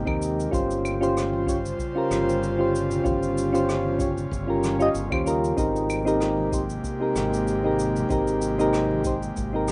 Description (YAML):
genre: sunset chillout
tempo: 95 BPM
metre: 4/4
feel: swing 54% on 16ths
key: Ab major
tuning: A4 = 439 Hz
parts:
  - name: soft electric-piano-like synth keys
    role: accompaniment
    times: 0.0-9.7 s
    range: C4 to Eb5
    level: -26 LUFS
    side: equal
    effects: chorus, delay
  - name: airy breathy pad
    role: sustained chords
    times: 0.0-9.7 s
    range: C3 to C5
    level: -31 LUFS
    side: equal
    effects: chorus
  - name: modern bright fingered electric bass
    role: bass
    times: 0.0-9.7 s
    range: G1 to Eb2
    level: -33 LUFS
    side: equal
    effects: none
  - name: claves, cabasa and rim click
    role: drums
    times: 0.1-9.7 s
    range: none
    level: -38 LUFS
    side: equal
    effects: none
  - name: electronic kick drum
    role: drums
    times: 0.1-9.5 s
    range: none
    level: -34 LUFS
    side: equal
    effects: none
  - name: congas and bongos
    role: percussion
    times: 0.5-9.7 s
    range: none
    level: -42 LUFS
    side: equal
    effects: none
room: studio ambience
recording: rough home demo mix, nothing above 10.3 kHz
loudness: -24 LUFS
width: mono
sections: 0.0-9.7 A section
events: none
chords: 0.0 Abmaj9; 0.5 Eb13/G (rootless); 5.6 Abmaj9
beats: | 0.53 1.16 1.79 2.42 | 3.05 3.69 4.32 4.95 | 5.58 6.21 6.84 7.47 | 8.11 8.74 9.37